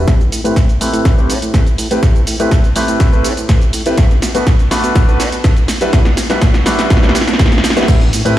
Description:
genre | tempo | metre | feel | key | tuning
filtered disco house | 123 BPM | 4/4 | straight | A dorian | A4 = 441 Hz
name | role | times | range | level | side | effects
clear concert grand piano | accompaniment | 0.0-8.4 s | G3 to B4 | -18 LUFS | equal | phaser, sidechain pumping, low-pass filter
fingered electric bass | bass | 0.0-8.4 s | E1 to B2 | -21 LUFS | right 1 dB | sidechain pumping, high-pass filter, low-pass filter
electronic kick drum | drums | 0.1-8.0 s | none | -11 LUFS | equal | none
punchy analog drum machine | drums | 0.1-8.4 s | cabasa, crash cymbal, hi-hat, snare drum | -17 LUFS | right 1 dB | sidechain pumping on perc, sidechain pumping on hats, sidechain pumping on cymbals
room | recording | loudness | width
light reverb | played on a big sound system in a bare room, stone room reverb | -10 LUFS | side -13 dB against mid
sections
0.1-7.9 A section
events
build-up 0.1-7.9; drum fill 0.1-7.9; filter sweep 0.1-7.9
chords
0.1 Am9; 4.0 Bm7; 5.7 Em9; 7.9 Am9

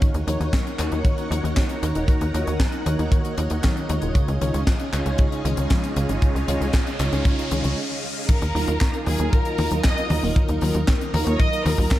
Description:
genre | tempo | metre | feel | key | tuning
italo disco | 116 BPM | 4/4 | straight | Eb minor | A4 = 440 Hz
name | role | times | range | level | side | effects
string machine, full ensemble | sustained chords | 0.0-12.0 s | Db4 to Gb5 | -30 LUFS | left 1 dB | ensemble chorus
warbly dusty pluck | arpeggios | 0.0-12.0 s | Eb2 to Eb4 | -31 LUFS | left 2 dB | chorus, digital delay
mellow synth brass | stabs | 0.0-12.0 s | Db3 to Db5 | -29 LUFS | right 2 dB | chorus, cassette tape, digital delay
kick drum | drums | 0.0-12.0 s | none | -20 LUFS | equal | studio reverb
tight funk drum kit | drums | 0.0-12.0 s | crash cymbal, handclaps, hi-hat, snare drum, toms | -29 LUFS | left 1 dB | studio reverb, gated reverb
tight sequencer bass | bass | 0.1-11.9 s | Eb1 to Eb2 | -25 LUFS | equal | none
riser | sound effects | 5.5-8.3 s | none | -34 LUFS | left 1 dB | none
warm symphonic violin section | melody | 8.3-12.0 s | Ab4 to Eb6 | -28 LUFS | equal | digital delay
room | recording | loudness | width
studio reverb | none | -19 LUFS | side -14 dB against mid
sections
0.0-8.3 A section; 8.3-12.0 B section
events
riser 5.5-8.3; break 7.8-8.3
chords
0.0 Ebm7; 4.2 Dbadd9; 8.3 Ebmadd9

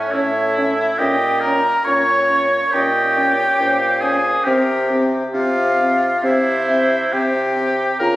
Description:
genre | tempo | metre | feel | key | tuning
classical, slow romantic movement for wind quintet | 68 BPM | 4/4 | rubato | unclear | A4 = 442 Hz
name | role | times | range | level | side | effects
mellow hollow concert flute | melody | 0.0-8.2 s | C#5 to Db6 | -21 LUFS | equal | none
clear oboe | second line | 0.0-8.2 s | C#4 to Db5 | -19 LUFS | equal | none
mellow clarinet | accompaniment | 0.0-8.2 s | G4 to E5 | -24 LUFS | right 2 dB | none
warm bassoon | bass | 0.0-8.2 s | A2 to Db3 | -22 LUFS | equal | none
mellow French horn | accompaniment | 0.1-8.2 s | C4 to F4 | -24 LUFS | equal | none
room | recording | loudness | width
moderate concert hall reverb, RT60 2.2 s | recorded on a phone in the room, studio reverb, compression | -15 LUFS | side -16 dB against mid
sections
0.0-8.2 A section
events
none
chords
0.0 A; 1.0 Gdim/Bb; 4.5 C

